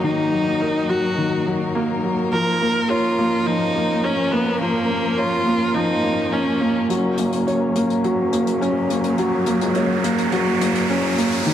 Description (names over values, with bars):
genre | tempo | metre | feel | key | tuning
piano and strings electronica | 105 BPM | 4/4 | straight | F# major | A4 = 439 Hz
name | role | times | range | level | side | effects
clear viola | melody | 0.0-6.8 s | A#3 to A#4 | -22 LUFS | right 1 dB | tape echo
dark string quartet | sustained chords | 0.0-11.5 s | E#3 to A#4 | -24 LUFS | left 1 dB | low-pass filter
felt-muted upright piano | riff | 0.0-11.5 s | D#3 to C#5 | -20 LUFS | equal | tape echo
rich studio double bass section | bass | 6.9-11.5 s | F#1 to C#2 | -30 LUFS | equal | high-pass filter
hi-hat | drums | 6.9-11.5 s | none | -34 LUFS | left 6 dB | high-pass filter on hats, high-pass filter on room
riser | sound effects | 8.1-11.5 s | none | -27 LUFS | right 5 dB | none
room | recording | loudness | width
moderate scoring stage reverb, RT60 1.9 s | none | -18 LUFS | side -10 dB against mid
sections
0.0-6.9 A section; 6.9-11.5 B section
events
filter sweep on felt piano 0.0-6.9; build-up 6.9-11.5; filter sweep on string quartet 6.9-11.5; riser 8.1-11.5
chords
0.0 D#m; 2.3 A#m; 6.9 F#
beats
| 0.04 0.61 1.18 1.75 | 2.33 2.90 3.47 4.04 | 4.61 5.18 5.75 6.33 | 6.90 7.47 8.04 8.61 | 9.18 9.75 10.32 10.90 | 11.47